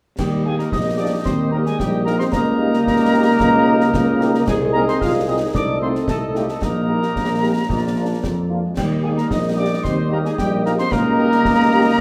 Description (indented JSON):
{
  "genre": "military-style march for wind band",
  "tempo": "112 BPM",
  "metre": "2/4",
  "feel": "straight",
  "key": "Eb major",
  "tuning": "A4 = 440 Hz",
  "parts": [
    { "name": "dark trumpet section", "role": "melody", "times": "0.2-12.0 s", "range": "G4 to F5", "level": "-27 LUFS", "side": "equal", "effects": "none" },
    { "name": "piccolo", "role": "second line", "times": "0.2-12.0 s", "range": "G5 to F6", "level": "-28 LUFS", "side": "equal", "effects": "none" },
    { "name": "warm euphonium", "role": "second line", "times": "0.2-12.0 s", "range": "G3 to F4", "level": "-24 LUFS", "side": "equal", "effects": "none" },
    { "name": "warm woodwind section", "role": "second line", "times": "0.2-12.0 s", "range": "F4 to Eb5", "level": "-32 LUFS", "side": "equal", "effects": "none" },
    { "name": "bright trombone section", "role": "sustained chords", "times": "0.2-12.0 s", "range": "G3 to Eb4", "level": "-30 LUFS", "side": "equal", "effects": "none" },
    { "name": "warm tuba", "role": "bass", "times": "0.2-11.9 s", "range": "Bb1 to F2", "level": "-24 LUFS", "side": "equal", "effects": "none" },
    { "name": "concert snare drum, clash cymbals and concert bass drum", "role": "drums", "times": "0.2-12.0 s", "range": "none", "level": "-28 LUFS", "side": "equal", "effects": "none" },
    { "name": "warm French horn section", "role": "accompaniment", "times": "0.4-11.8 s", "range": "A3 to Ab4", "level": "-30 LUFS", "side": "equal", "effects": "none" }
  ],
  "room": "wet large studio reverb, RT60 0.9 s",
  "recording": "heard from further back in the room",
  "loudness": "-18 LUFS",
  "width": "mono",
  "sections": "0.2-12.0 A section",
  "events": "none",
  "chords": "0.2 Eb; 2.3 Eb7/Db; 4.5 Ab/C; 5.5 F7/C; 6.6 Eb/Bb; 7.7 Bb; 8.8 Eb; 10.9 Eb7/Db",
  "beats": "| 0.19 0.72 | 1.26 1.79 | 2.33 2.87 | 3.40 3.94 | 4.48 5.01 | 5.55 6.09 | 6.62 7.16 | 7.70 8.23 | 8.77 9.31 | 9.84 10.38 | 10.92 11.45 | 11.99"
}